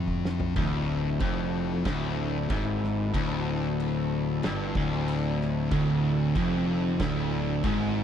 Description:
stoner and doom metal; 93 BPM; 4/4; straight; D minor; A4 = 440 Hz
overtone-sweeping drone; sustained chords; 0.0-8.0 s; D3 to A4; -40 LUFS; right 2 dB; chorus, built-in reverb
thick fuzz guitar; riff; 0.0-8.0 s; D2 to G#2; -30 LUFS; left 7 dB; distortion
thick fuzz guitar; riff; 0.0-0.6, 5.7-8.0 s; D2 to G#2; -30 LUFS; right 8 dB; distortion
oversized low-tuned drum kit; drums; 0.1-7.8 s; crash cymbal, kick drum, snare drum, toms; -34 LUFS; equal
biting overdriven guitar; riff; 0.6-8.0 s; D2 to G#2; -31 LUFS; right 2 dB
fuzz picked electric bass; bass; 0.6-8.0 s; D1 to G#1; -33 LUFS; right 1 dB; overdrive
little or no reverb; dry, close 1970s-style studio recording; -25 LUFS; side -9 dB against mid
0.6-8.0 A section
break 0.0-0.6; drum fill 0.0-0.6
0.0 Dm

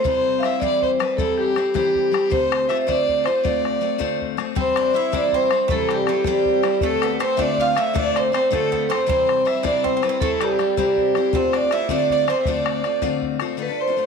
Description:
celtic folk, Celtic jig; 106 BPM (dotted quarters); 6/8; straight; D minor; A4 = 440 Hz
vibraphone with hard mallets; melody; 0.0-14.1 s; G4 to F5; -20 LUFS; right 2 dB; tape echo
clear fiddle; second line; 0.0-14.1 s; G4 to F5; -28 LUFS; left 8 dB
picked steel-string acoustic guitar; accompaniment; 0.0-14.1 s; C3 to C5; -25 LUFS; left 12 dB
bodhran; percussion; 0.0-13.5 s; -28 LUFS; left 4 dB
Irish bouzouki; second line; 4.6-13.2 s; G3 to F4; -27 LUFS; right 12 dB
moderate echo chamber reverb, RT60 1.4 s, studio reverb; 1960s-style stereo with parts hard left and right; -18 LUFS; side -5 dB against mid
0.0-4.6 A section; 4.6-13.6 A section
0.1 C; 2.3 Dm7; 4.6 C; 6.8 Dm7; 9.1 C; 11.3 Dm7

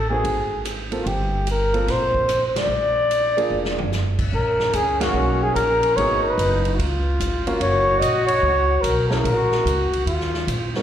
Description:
jazz, small-group swing and bop; 147 BPM; 4/4; swing 65% on 8ths; Eb minor from 4.3 s; A4 = 440 Hz
breathy flugelhorn; melody; 0.0-9.9 s; F4 to Eb5; -20 LUFS; left 1 dB; slapback echo
upright bass; bass; 0.0-10.8 s; F1 to Bb2; -25 LUFS; equal
warm baby grand piano; accompaniment; 0.1-10.8 s; Ab3 to F5; -27 LUFS; right 2 dB; slapback echo
swinging big-band drum kit; drums; 0.2-10.8 s; crash cymbal, hi-hat, kick drum, ride cymbal, rim click, snare drum, toms; -28 LUFS; right 1 dB
clear trombone; second line; 4.3-10.7 s; Db4 to Gb4; -25 LUFS; right 1 dB; slapback echo
light reverb; live gig heard through the venue's PA, recital hall reverb; -18 LUFS; side -10 dB against mid
0.0-4.3 A section; 4.3-10.8 B section
band accent 2.5, 4.9; drum fill 3.5-3.9
0.2 Abadd9; 1.1 Gm11; 2.7 Bb7; 4.3 Ebm7; 6.0 Abm7; 6.8 Db; 7.6 Gbmaj7; 9.2 Gb/Bb; 10.1 Eb5

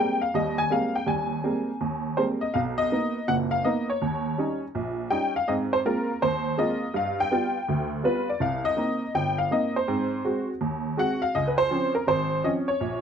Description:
solo jazz; 164 BPM; 4/4; swing 64% on 8ths; Ab major; A4 = 440 Hz
honky-tonk upright piano; solo; 0.0-13.0 s; F#1 to Ab5; -23 LUFS; equal
light reverb; -23 LUFS; side -7 dB against mid
0.0-2.5 A section; 2.5-13.0 B section
0.0 Abmaj9; 2.5 Bmaj7; 4.0 Eb7; 5.5 Ab69; 6.9 G7; 8.4 Cm7; 9.9 Ab7; 11.3 Dbmaj7

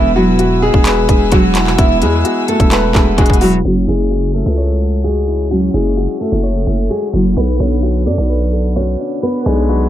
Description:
hip hop, trap; 129 BPM; 4/4; half-time; F# minor; A4 = 440 Hz
nylon-string guitar; melody; 0.0-9.9 s; E3 to D5; -17 LUFS; equal; low-pass filter, analog delay
dark concert grand piano; accompaniment; 0.0-9.9 s; D3 to C#5; -19 LUFS; left 2 dB; low-pass filter
warm studio string section; sustained chords; 0.0-9.9 s; B4 to E6; -28 LUFS; left 2 dB
growling 808-style bass; bass; 0.0-9.9 s; E1 to F#2; -15 LUFS; equal
trap drum kit; drums; 0.4-3.5 s; handclaps, hi-hat, kick drum; -14 LUFS; equal; analog delay
small room ambience; echo-heavy mix, low-pass filter; -11 LUFS; side -12 dB against mid
0.0-3.6 A section; 3.6-9.9 B section
filter sweep 3.6-9.9
0.0 Eadd9; 3.6 F#m7; 7.4 Bm7

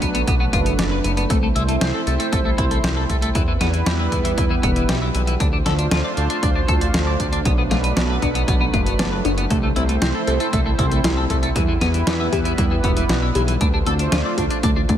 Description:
synthwave; 117 BPM; 4/4; straight; A minor; A4 = 440 Hz
chorused pulse-width pad; sustained chords; 0.0-15.0 s; F#3 to C5; -24 LUFS; right 2 dB; sidechain pumping, shimmer reverb
twelve-string electric guitar; riff; 0.0-14.9 s; E3 to D5; -25 LUFS; left 2 dB; wide subtle chorus, tape echo, shimmer reverb
fat analog bass; bass; 0.0-15.0 s; E1 to E2; -22 LUFS; equal; sidechain pumping
clean 12-bit digital drum machine; drums; 0.0-15.0 s; hi-hat, snare drum; -26 LUFS; equal
electronic kick drum; drums; 0.0-15.0 s; -22 LUFS; equal
warbly dusty pluck; arpeggios; 7.5-15.0 s; F#3 to A4; -26 LUFS; left 1 dB; chorus, tape echo, shimmer reverb
light reverb; -17 LUFS; side -10 dB against mid
0.0-15.0 A section
0.0 Bm7; 1.3 Am/C; 3.4 Em; 5.4 Dm7; 7.5 Bm7; 9.5 Am/C; 11.6 Em; 13.6 Dm7

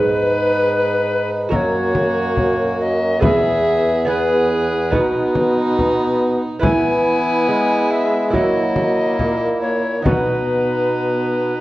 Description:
classical, renaissance-style consort dance; 70 BPM; 4/4; straight; B major; A4 = 440 Hz
alto recorder; melody; 0.0-11.6 s; B4 to G#5; -21 LUFS; left 2 dB
warm violin; second line; 0.0-11.6 s; D#4 to B4; -24 LUFS; right 2 dB
bright trombone; accompaniment; 0.0-11.6 s; A#3 to D#4; -23 LUFS; left 1 dB
lute; accompaniment; 0.0-11.6 s; E2 to B4; -24 LUFS; right 2 dB
warm bassoon; bass; 0.0-11.6 s; E2 to G#3; -21 LUFS; right 1 dB
frame drum; percussion; 1.5-10.5 s; -22 LUFS; left 1 dB
wet recital hall reverb, RT60 1.4 s; worn, warbling old tape, cassette tape, warbly pitch drift; -15 LUFS; side -16 dB against mid
0.0-11.6 A section
0.0 G#m; 1.5 F#; 3.2 E; 4.9 B; 6.6 E; 8.3 F#7; 10.1 B

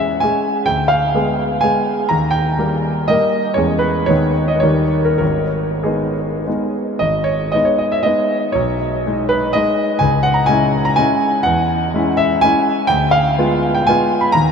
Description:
classical, romantic triple-time dance for piano with dotted rhythms; 91-134 BPM; 3/4; rubato; G# minor; A4 = 440 Hz
clear grand piano; solo; 0.0-14.5 s; G#1 to B5; -14 LUFS; equal
wet huge ambient reverb, RT60 9.0 s; in a vast, echoing space; -14 LUFS; side -6 dB against mid
0.0-7.0 A section; 7.0-14.5 A section
0.0 C#m/E; 0.7 Ddim7; 2.1 D#; 3.6 C#m/E; 4.1 G#m/D#; 4.6 D#7; 5.2 G#m; 8.5 G#m/B; 10.0 C#m; 11.5 C#m/E; 12.9 Ddim7

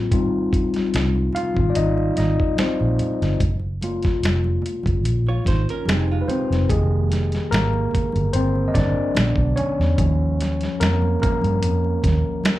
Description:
R&B, neo-soul; 73 BPM; 4/4; swing 53% on 16ths; F minor; A4 = 440 Hz
overdriven tine electric piano; accompaniment; 0.0-12.6 s; D3 to F5; -22 LUFS; left 2 dB; auto-pan
vintage muted fingered electric bass; bass; 0.0-12.2 s; F1 to G2; -21 LUFS; equal
dusty soul sampler-style drum kit; drums; 0.1-12.6 s; hi-hat, kick drum, snare drum; -23 LUFS; equal
congas; percussion; 0.1-12.6 s; -33 LUFS; right 1 dB
hollow-body jazz guitar; second line; 5.3-6.7 s; Ab3 to Db5; -29 LUFS; right 5 dB; slapback echo
light reverb; live gig heard through the venue's PA, club reverb; -18 LUFS; side -15 dB against mid
0.0-6.7 A section; 6.7-12.6 B section
tine electric piano solo 0.0-6.7, 6.7-12.6
0.1 Abmaj13; 3.4 Gbmaj9; 5.9 Fm9; 6.7 Fm11; 9.2 Bb7b9; 10.0 Eb9sus4

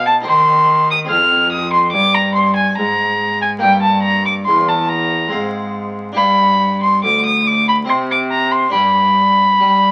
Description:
classical, baroque-style sonata movement with continuo; 71 BPM; 3/4; straight; A4 = 439 Hz
rich violin; melody; 0.0-9.9 s; G5 to F6; -15 LUFS; equal
harpsichord; accompaniment; 0.0-9.9 s; D2 to F5; -27 LUFS; equal
rich cello; bass; 0.0-9.9 s; D2 to G3; -23 LUFS; equal
moderate studio reverb, RT60 0.9 s; very old 78 rpm record, vinyl crackle; -15 LUFS; mono
0.0-9.9 A section
0.3 Cm/Eb; 1.1 Fm; 3.6 Edim/G; 5.3 Fm/Ab; 6.2 G5; 7.9 Cm; 8.7 G

